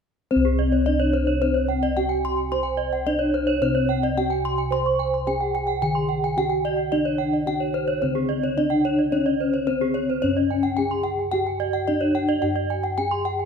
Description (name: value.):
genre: gamelan.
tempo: 109 BPM.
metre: 4/4.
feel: straight.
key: C pelog.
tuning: A4 = 439 Hz.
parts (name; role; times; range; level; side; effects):
gamelan-type bronze metallophone; melody; 0.3-13.5 s; C4 to C5; -24 LUFS; equal; none.
gamelan-type bronze metallophone; arpeggios; 0.3-13.4 s; C5 to C6; -27 LUFS; left 4 dB; none.
gamelan-type bossed gongs; bass; 0.3-13.5 s; C2 to C5; -27 LUFS; left 1 dB; none.
gamelan-type bronze metallophone; arpeggios; 0.5-13.5 s; Ab4-40c to Db6; -28 LUFS; right 8 dB; none.
room: moderate recital hall reverb, RT60 1.5 s.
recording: minimal, uncompressed stereo recording.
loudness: -20 LUFS.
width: side -6 dB against mid.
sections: 0.3-13.5 A section.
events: none.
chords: none.